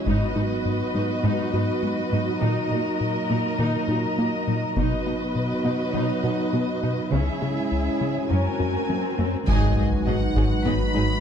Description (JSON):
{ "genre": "cinematic, hybrid orchestral and electronic film score", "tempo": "102 BPM", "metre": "4/4", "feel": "straight", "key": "G# minor", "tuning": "A4 = 440 Hz", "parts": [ { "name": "dark chamber violin section", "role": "second line", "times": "0.0-11.0 s", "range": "G#4 to G#5", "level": "-30 LUFS", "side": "left 2 dB", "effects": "none" }, { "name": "warm symphonic viola section", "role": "accompaniment", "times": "0.0-11.0 s", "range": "F#3 to F#4", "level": "-32 LUFS", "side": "right 1 dB", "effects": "none" }, { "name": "dark analog pad", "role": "sustained chords", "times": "0.0-11.2 s", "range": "F#3 to D#5", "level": "-28 LUFS", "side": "right 2 dB", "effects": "lush chorus" }, { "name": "analog pluck", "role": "arpeggios", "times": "0.1-11.1 s", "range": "C#3 to B4", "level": "-33 LUFS", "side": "left 4 dB", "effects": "none" }, { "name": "rubbery square bass", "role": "riff", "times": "0.1-11.1 s", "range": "C#2 to B3", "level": "-28 LUFS", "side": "left 3 dB", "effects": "none" }, { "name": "warm symphonic cello section", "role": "bass", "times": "0.1-11.0 s", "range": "F#2 to C#3", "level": "-29 LUFS", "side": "right 4 dB", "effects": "none" }, { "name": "solo taiko drums", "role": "drums", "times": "0.1-1.2, 4.8-5.9, 9.5-10.9 s", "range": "none", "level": "-27 LUFS", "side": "equal", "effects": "none" }, { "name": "swell and impact", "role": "sound effects", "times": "8.3-11.2 s", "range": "none", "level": "-31 LUFS", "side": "left 1 dB", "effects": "none" }, { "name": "warm symphonic violin section", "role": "melody", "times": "9.5-11.2 s", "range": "F#5 to B5", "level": "-30 LUFS", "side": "left 3 dB", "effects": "none" }, { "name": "mellow French horn section", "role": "sustained chords", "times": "9.5-11.2 s", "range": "F#3 to D#4", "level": "-32 LUFS", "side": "left 7 dB", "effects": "none" }, { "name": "punchy sub bass", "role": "bass", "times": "9.5-11.2 s", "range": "G#1", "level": "-28 LUFS", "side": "equal", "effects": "none" }, { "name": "warm symphonic double bass section", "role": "bass", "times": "9.5-11.0 s", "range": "G#1", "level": "-31 LUFS", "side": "right 5 dB", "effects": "none" } ], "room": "moderate scoring stage reverb, RT60 1.7 s", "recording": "dark, warm production", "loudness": "-21 LUFS", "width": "side -8 dB against mid", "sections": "0.0-9.5 A section; 9.5-11.2 B section", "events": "build-up 0.0-9.5; swell 8.3-9.5; band accent 9.5-10.1; impact 9.5-11.2", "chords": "0.1 G#m7; 2.4 D#m; 4.8 B; 7.1 C#m; 8.3 F#add9; 9.5 G#m7", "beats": "| 0.07 0.65 1.24 1.83 | 2.42 3.01 3.60 4.18 | 4.77 5.36 5.95 6.54 | 7.12 7.71 8.30 8.89 | 9.48 10.07 10.65" }